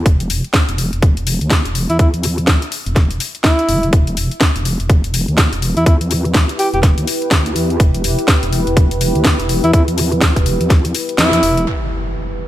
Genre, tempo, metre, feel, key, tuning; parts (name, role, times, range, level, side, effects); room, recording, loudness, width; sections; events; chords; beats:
bass house; 124 BPM; 4/4; swing 60% on 16ths; E minor; A4 = 437 Hz
vowel-sweep wobble bass; bass; 0.0-11.7 s; E1 to E2; -18 LUFS; equal; chorus, sidechain pumping
electronic kick drum; drums; 0.1-10.8 s; -12 LUFS; equal; studio reverb
house drum kit; drums; 0.1-11.7 s; hi-hat, snare drum; -19 LUFS; left 1 dB; overdrive, studio reverb
mellow alto saxophone; melody; 1.9-11.7 s; E4 to G4; -19 LUFS; equal; tape echo
deep dark ambient pad; sustained chords; 5.7-12.5 s; E3 to B4; -22 LUFS; equal; chorus, built-in reverb, sidechain pumping
impact; sound effects; 11.7-12.5 s; -22 LUFS; equal
digital ambience; -12 LUFS; side -14 dB against mid
0.0-11.7 A section
kick drops out 11.2-11.7; band accent 11.2; impact 11.7-12.5
0.0 Em
| 0.06 0.54 1.02 1.51 | 1.99 2.48 2.96 3.44 | 3.93 4.41 4.90 5.38 | 5.86 6.35 6.83 7.32 | 7.80 8.28 8.77 9.25 | 9.73 10.22 10.70 11.19 | 11.67 12.15